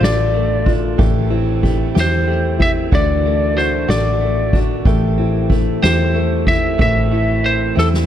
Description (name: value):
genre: six-eight pop ballad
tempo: 62 BPM (dotted quarters)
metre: 6/8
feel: straight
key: A minor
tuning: A4 = 440 Hz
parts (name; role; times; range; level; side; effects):
- lightly driven lead guitar; melody; 0.0-8.1 s; A4 to E5; -19 LUFS; left 1 dB; tape echo
- warm grand piano; accompaniment; 0.0-8.1 s; D3 to C5; -22 LUFS; left 9 dB; none
- direct-recorded clean electric guitar; arpeggios; 0.0-8.1 s; E3 to G4; -25 LUFS; right 15 dB; none
- vintage muted fingered electric bass; bass; 0.0-8.1 s; A1 to E2; -18 LUFS; equal; none
- soft-mallet drum kit; drums; 0.0-8.1 s; kick drum, ride cymbal, snare drum; -19 LUFS; equal; none
room: studio ambience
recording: dark, warm production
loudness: -13 LUFS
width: side -10 dB against mid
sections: 0.0-8.1 A section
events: drum fill 7.8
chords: 0.0 Dm; 1.0 Am7; 2.9 Dadd9; 4.9 Am7; 6.8 Am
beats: 0.02 | 0.99 1.95 | 2.92 3.89 | 4.86 5.83 | 6.79 7.76